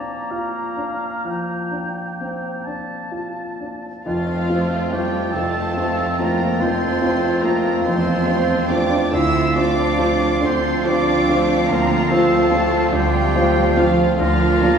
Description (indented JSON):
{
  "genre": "classical",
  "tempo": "42-49 BPM (dotted quarters)",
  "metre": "12/8",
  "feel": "rubato",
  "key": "Bb major, F major from 4.1 s",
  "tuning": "A4 = 438 Hz",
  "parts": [
    { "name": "warm baby grand piano", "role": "melody", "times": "0.0-14.8 s", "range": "F1 to F4", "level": "-20 LUFS", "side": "equal", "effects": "none" },
    { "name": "bright clarinet", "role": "second line", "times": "0.0-14.8 s", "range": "Bb3 to F4", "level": "-28 LUFS", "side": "right 1 dB", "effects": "none" },
    { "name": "silver concert flute", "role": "second line", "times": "0.0-14.8 s", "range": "Bb5 to C7", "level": "-29 LUFS", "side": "left 1 dB", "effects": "none" },
    { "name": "warm oboe", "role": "second line", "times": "0.0-14.8 s", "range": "F4 to A5", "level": "-27 LUFS", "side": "right 1 dB", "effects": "none" },
    { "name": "rich symphonic violin section", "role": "melody", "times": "4.1-14.8 s", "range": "F5 to E6", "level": "-29 LUFS", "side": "left 1 dB", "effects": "none" },
    { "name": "clear symphonic violin section", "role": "second line", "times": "4.1-14.8 s", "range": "C4 to F4", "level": "-30 LUFS", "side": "left 1 dB", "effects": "none" },
    { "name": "rich symphonic viola section", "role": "accompaniment", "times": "4.1-14.8 s", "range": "F3 to Bb3", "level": "-27 LUFS", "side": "right 2 dB", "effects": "none" },
    { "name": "dark French horn section", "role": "sustained chords", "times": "4.1-14.8 s", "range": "F3 to E4", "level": "-26 LUFS", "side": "equal", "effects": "none" },
    { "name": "dark trombone section", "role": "sustained chords", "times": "4.1-14.8 s", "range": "F3 to C4", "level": "-30 LUFS", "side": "right 3 dB", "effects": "none" },
    { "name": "rich symphonic cello section", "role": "bass", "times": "4.1-14.8 s", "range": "F3 to E4", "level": "-27 LUFS", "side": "right 2 dB", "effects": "none" },
    { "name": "rich symphonic double bass section", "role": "bass", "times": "4.1-14.8 s", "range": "D2 to F2", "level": "-28 LUFS", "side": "right 2 dB", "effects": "none" }
  ],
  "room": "wet scoring stage reverb, RT60 1.7 s",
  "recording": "heard from further back in the room, small room ambience",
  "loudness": "-16 LUFS",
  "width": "side -7 dB against mid",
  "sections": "0.0-4.1 A section; 4.1-14.8 B section",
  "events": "none",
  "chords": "0.0 Bb; 4.1 F; 9.1 Dm7; 14.2 Bb/D",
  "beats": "1.25 2.66 | 4.06 5.33 6.60 7.85 | 9.14 10.43 11.69 12.93 | 14.19"
}